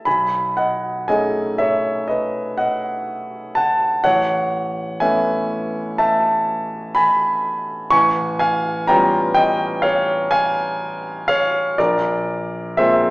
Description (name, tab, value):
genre	classical, impressionist solo piano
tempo	62 BPM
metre	4/4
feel	rubato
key	A lydian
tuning	A4 = 443 Hz
part	warm concert grand piano	solo	0.0-13.1 s	A1 to C#6	-16 LUFS	equal	none
room	wet recital hall reverb, RT60 1.5 s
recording	heard from further back in the room, small speaker sound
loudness	-16 LUFS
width	side -22 dB against mid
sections	0.0-13.1 A section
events	none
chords	0.1 B13; 4.0 Amaj9; 7.9 C#7#11/A; 11.8 Bb9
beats	| 0.06 1.08 2.09 3.07 | 4.04 5.01 5.99 6.95 | 7.92 8.89 9.84 10.81 | 11.79 12.78